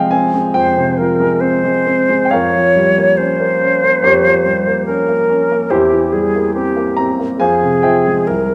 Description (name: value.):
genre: classical, romantic duo for flute and grand piano.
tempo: 64-73 BPM.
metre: 4/4.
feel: rubato.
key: F minor.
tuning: A4 = 440 Hz.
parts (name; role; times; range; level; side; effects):
warm grand piano; accompaniment; 0.0-8.5 s; C2 to Bb5; -17 LUFS; equal; none.
hollow concert flute; melody; 0.5-8.5 s; G4 to Db5; -16 LUFS; equal; none.
room: wet recital hall reverb, RT60 1.5 s.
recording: none.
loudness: -14 LUFS.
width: mono.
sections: 0.0-8.5 A section.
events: none.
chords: 0.0 Fm; 2.3 Gm7b5/F; 5.7 C7/E; 7.4 Fm.